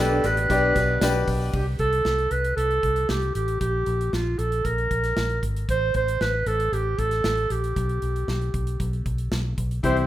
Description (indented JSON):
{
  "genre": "piano-driven pop",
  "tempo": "116 BPM",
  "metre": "4/4",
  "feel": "straight",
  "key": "unclear",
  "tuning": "A4 = 436 Hz",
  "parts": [
    { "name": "mellow clarinet", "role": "melody", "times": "0.0-10.0 s", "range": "F4 to C5", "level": "-25 LUFS", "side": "right 2 dB", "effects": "plate reverb" },
    { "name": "bright upright piano", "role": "accompaniment", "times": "0.0-1.6, 9.8-10.1 s", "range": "B2 to D5", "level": "-24 LUFS", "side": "left 3 dB", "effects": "plate reverb" },
    { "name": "fingerpicked plugged-in steel-string acoustic guitar", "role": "riff", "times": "0.0-1.5, 9.8-10.1 s", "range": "C3 to C5", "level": "-32 LUFS", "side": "right 5 dB", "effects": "none" },
    { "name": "vintage muted fingered electric bass", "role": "bass", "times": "0.0-10.0 s", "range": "Ab1 to C2", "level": "-26 LUFS", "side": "equal", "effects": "none" },
    { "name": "modern studio drum kit", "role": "drums", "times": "0.2-10.1 s", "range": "crash cymbal, hi-hat, kick drum, snare drum", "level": "-31 LUFS", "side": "equal", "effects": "none" },
    { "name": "tambourine", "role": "percussion", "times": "0.2-1.5 s", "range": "none", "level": "-41 LUFS", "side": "left 6 dB", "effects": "none" }
  ],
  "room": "moderate studio reverb, RT60 0.7 s",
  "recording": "rough home demo mix",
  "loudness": "-21 LUFS",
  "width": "side -13 dB against mid",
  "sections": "0.0-1.5 A section; 1.5-10.1 B section",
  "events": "none",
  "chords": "0.0 G; 1.5 Am7; 3.6 Gm; 5.7 Am7; 7.8 G/B"
}